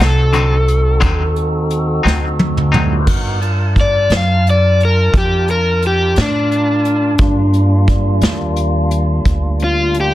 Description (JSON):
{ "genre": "slow blues", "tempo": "58 BPM (dotted quarters)", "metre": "12/8", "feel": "straight", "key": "G minor", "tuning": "A4 = 436 Hz", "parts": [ { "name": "overdriven semi-hollow guitar", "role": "melody", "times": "0.0-10.1 s", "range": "D4 to F5", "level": "-16 LUFS", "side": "left 1 dB", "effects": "plate reverb" }, { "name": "electric guitar at the edge of break-up", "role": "accompaniment", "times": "0.0-2.9 s", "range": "D3 to Eb4", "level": "-19 LUFS", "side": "left 4 dB", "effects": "tremolo, plate reverb" }, { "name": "tonewheel organ", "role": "sustained chords", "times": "0.0-10.1 s", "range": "G3 to A5", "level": "-22 LUFS", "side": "right 1 dB", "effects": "slow rotary speaker" }, { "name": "upright bass", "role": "bass", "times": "0.0-10.1 s", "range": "C2 to A2", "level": "-15 LUFS", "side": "equal", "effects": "none" }, { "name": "vintage brush drum kit", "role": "drums", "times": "0.0-10.1 s", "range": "crash cymbal, hi-hat, kick drum, snare drum, toms", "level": "-17 LUFS", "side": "equal", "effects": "soft clipping on snare" } ], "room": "light reverb", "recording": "dense, heavily limited modern master", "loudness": "-12 LUFS", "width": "side -14 dB against mid", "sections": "0.0-3.1 A section; 3.1-10.1 B section", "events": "drum fill 2.0-3.1; overdriven electric guitar solo 3.1-10.1", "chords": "0.0 D7b9; 3.1 Gm7", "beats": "1.02 2.04 | 3.07 4.10 5.13 6.16 | 7.19 8.23 9.26" }